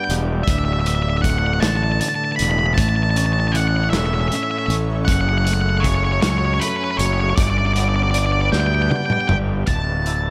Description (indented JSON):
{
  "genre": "post-rock",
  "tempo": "52 BPM (dotted quarters)",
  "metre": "6/8",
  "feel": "straight",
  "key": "D major",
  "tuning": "A4 = 439 Hz",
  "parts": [
    { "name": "octave-fuzz lead guitar", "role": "melody", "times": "0.0-10.3 s", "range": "B4 to B5", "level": "-24 LUFS", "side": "equal", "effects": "distortion, analog delay" },
    { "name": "shimmering ambient pad", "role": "sustained chords", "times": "0.0-10.3 s", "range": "D3 to D5", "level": "-34 LUFS", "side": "equal", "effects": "chorus, built-in reverb" },
    { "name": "clean electric guitar", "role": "arpeggios", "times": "0.0-10.3 s", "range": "D2 to E4", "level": "-28 LUFS", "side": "equal", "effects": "subtle chorus, slapback echo, analog delay" },
    { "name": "fuzz fingered electric bass", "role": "bass", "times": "0.1-10.3 s", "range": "D1 to D2", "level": "-22 LUFS", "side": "equal", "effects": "overdrive" },
    { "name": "loose indie drum kit", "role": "drums", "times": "0.1-10.2 s", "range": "hi-hat, kick drum, snare drum, toms", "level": "-25 LUFS", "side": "equal", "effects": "none" }
  ],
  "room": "light reverb",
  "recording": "none",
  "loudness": "-19 LUFS",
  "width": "mono",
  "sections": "0.0-9.7 A section",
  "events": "drum fill 8.5-9.7",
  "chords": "0.5 Dsus2; 2.8 A; 5.1 F#m; 7.4 G; 9.7 Dsus2",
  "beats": "| 0.47 1.62 | 2.78 3.93 | 5.08 6.23 | 7.38 8.53 | 9.69"
}